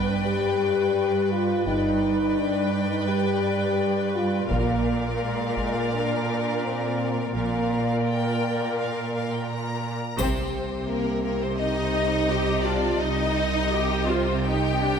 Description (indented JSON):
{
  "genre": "cinematic, epic orchestral film score",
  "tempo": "84 BPM",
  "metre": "4/4",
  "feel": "straight",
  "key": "C minor",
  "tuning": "A4 = 442 Hz",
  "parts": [
    { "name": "bright symphonic violin section", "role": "melody", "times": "0.0-15.0 s", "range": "Bb4 to Bb5", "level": "-33 LUFS", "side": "left 4 dB", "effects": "none" },
    { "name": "rich symphonic violin section", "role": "second line", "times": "0.0-15.0 s", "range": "Bb3 to D5", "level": "-31 LUFS", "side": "left 2 dB", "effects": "none" },
    { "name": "rich symphonic viola section", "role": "accompaniment", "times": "0.0-15.0 s", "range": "D4 to B4", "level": "-30 LUFS", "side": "right 1 dB", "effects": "none" },
    { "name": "mellow French horn section", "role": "sustained chords", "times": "0.0-15.0 s", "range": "Ab3 to G4", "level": "-27 LUFS", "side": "left 3 dB", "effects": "none" },
    { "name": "rich symphonic cello section", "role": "bass", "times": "0.0-15.0 s", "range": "G2 to C3", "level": "-28 LUFS", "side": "right 3 dB", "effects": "none" },
    { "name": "rich symphonic double bass section", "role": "bass", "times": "1.7-15.0 s", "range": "G1 to C2", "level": "-30 LUFS", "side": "right 3 dB", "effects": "none" },
    { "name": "taiko ensemble", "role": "drums", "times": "4.5-5.9, 10.2-11.6 s", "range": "none", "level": "-33 LUFS", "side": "equal", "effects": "none" },
    { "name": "triangle", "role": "percussion", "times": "10.2-11.6 s", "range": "none", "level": "-41 LUFS", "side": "left 4 dB", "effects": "none" }
  ],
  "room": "wet scoring stage reverb, RT60 1.9 s",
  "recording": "none",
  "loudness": "-22 LUFS",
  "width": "side -7 dB against mid",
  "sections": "0.0-10.2 A section; 10.2-15.0 A section",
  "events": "band accent 10.2-10.9",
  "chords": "0.0 G; 4.5 Bb; 10.2 Cm",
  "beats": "0.24 0.95 | 1.66 2.37 3.08 3.79 | 4.50 5.21 5.92 6.63 | 7.34 8.05 8.76 9.47 | 10.18 10.89 11.60 12.31 | 13.02 13.73 14.44"
}